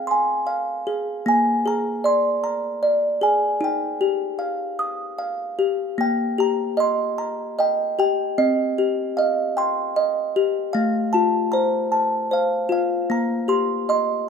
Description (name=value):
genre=children's music, lullaby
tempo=51 BPM (dotted quarters)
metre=6/8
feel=rubato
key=Eb major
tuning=A4 = 440 Hz
part: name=music box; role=solo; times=0.0-14.3 s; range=A3 to Eb6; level=-19 LUFS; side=equal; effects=none
room=moderate recital hall reverb, RT60 1.6 s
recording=minimal, uncompressed stereo recording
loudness=-19 LUFS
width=side -6 dB against mid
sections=0.0-6.0 A section; 6.0-14.3 A section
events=none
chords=0.0 Fm; 1.2 Bb7; 3.6 Ebadd9; 6.0 Eb; 8.4 Cm; 10.7 F; 13.1 Eb/Bb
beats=0.07 | 1.25 2.44 | 3.61 4.80 | 6.00 7.20 | 8.39 9.57 | 10.75 11.92 | 13.09 14.29